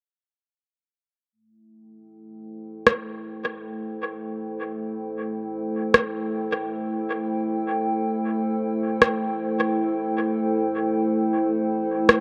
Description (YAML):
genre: ambient dub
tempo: free time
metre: none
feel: none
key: A minor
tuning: A4 = 440 Hz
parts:
  - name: warbly tape-like pad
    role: sustained chords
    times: 2.3-12.2 s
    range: A3 to G5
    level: -27 LUFS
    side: equal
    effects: chorus, built-in reverb
  - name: electronic rim click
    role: drums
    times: 2.9-12.2 s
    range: none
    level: -21 LUFS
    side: equal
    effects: dub echo
room: moderate spring reverb, RT60 2.3 s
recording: echo-heavy mix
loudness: -25 LUFS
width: mono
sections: 1.3-12.2 A section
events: fade-in on ambient pad 1.3-12.2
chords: 1.3 Am7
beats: free time